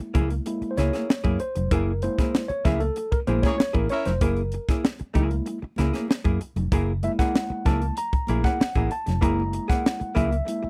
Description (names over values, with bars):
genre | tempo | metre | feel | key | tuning
funk | 96 BPM | 4/4 | straight | F# mixolydian | A4 = 440 Hz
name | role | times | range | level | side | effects
archtop guitar, miked and amplified | accompaniment | 0.0-10.7 s | A#3 to G#4 | -31 LUFS | equal | none
mellow tine electric piano | stabs | 0.0-10.7 s | G#3 to A#5 | -31 LUFS | equal | none
vintage muted fingered electric bass | bass | 0.0-10.7 s | E#1 to F#2 | -28 LUFS | equal | none
crisp fusion drum kit | drums | 0.1-10.6 s | hi-hat, kick drum, snare drum | -26 LUFS | equal | none
congas | percussion | 0.2-10.7 s | none | -38 LUFS | equal | none
warm horn section | second line | 3.4-4.1 s | A#3 to E5 | -30 LUFS | equal | none
room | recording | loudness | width
little or no reverb | dry, close 1970s-style studio recording | -24 LUFS | mono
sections
0.0-10.7 A section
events
tine electric piano solo 0.0-10.7; band accent 1.7-4.2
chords
0.0 F#9